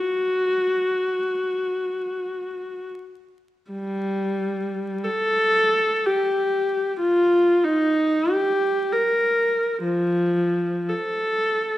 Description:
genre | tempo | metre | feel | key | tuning
classical, free, expressive piece for unaccompanied viola | free time | none | none | unclear | A4 = 440 Hz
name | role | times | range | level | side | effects
dark viola | solo | 0.0-11.8 s | F3 to Bb4 | -20 LUFS | equal | none
room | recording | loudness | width
moderate recital hall reverb, RT60 1.4 s | dark, warm production, vinyl crackle | -20 LUFS | side -15 dB against mid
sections
0.0-3.7 A section; 3.7-11.8 B section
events
none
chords
none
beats
free time

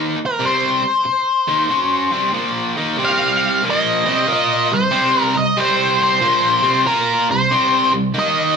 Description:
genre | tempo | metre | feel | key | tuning
rock | 93 BPM | 4/4 | swing 66% on 8ths | C minor | A4 = 440 Hz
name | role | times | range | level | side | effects
cranked stack guitar | riff | 0.0-8.6 s | Bb2 to Bb4 | -18 LUFS | right 1 dB | overdrive
octave-fuzz lead guitar | melody | 0.3-8.6 s | Bb4 to F5 | -16 LUFS | left 1 dB | distortion
room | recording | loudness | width
moderate large studio reverb, RT60 0.8 s | band playing live in one room | -14 LUFS | side -6 dB against mid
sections
0.0-3.0 A section; 3.0-8.6 B section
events
none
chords
0.0 Cm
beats
| 0.41 1.06 1.71 2.35 | 3.00 3.65 4.29 4.94 | 5.58 6.22 6.87 7.51 | 8.16

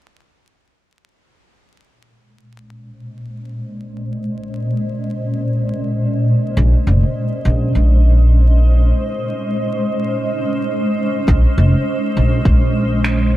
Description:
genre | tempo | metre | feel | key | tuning
ambient dub | 102 BPM | 4/4 | swing 59% on 16ths | Bb minor | A4 = 444 Hz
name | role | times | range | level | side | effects
granular cloud pad | sustained chords | 3.1-13.4 s | Bb2 to Eb5 | -19 LUFS | equal | built-in reverb
upright bass | bass | 6.6-13.4 s | F1 to Bb1 | -12 LUFS | equal | none
electronic kick drum | drums | 11.3-12.6 s | none | -16 LUFS | equal | none
finger snaps | drums | 13.0-13.2 s | none | -23 LUFS | equal | none
room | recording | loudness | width
light reverb | vinyl crackle | -14 LUFS | side -15 dB against mid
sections
1.9-11.3 A section; 11.3-13.4 B section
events
filter sweep on ambient pad 1.9-11.3; break 8.9-11.3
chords
1.9 Bbm11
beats
| 1.86 2.45 3.04 3.63 | 4.22 4.81 5.39 5.98 | 6.57 7.16 7.75 8.34 | 8.92 9.51 10.10 10.69 | 11.28 11.87 12.45 13.04

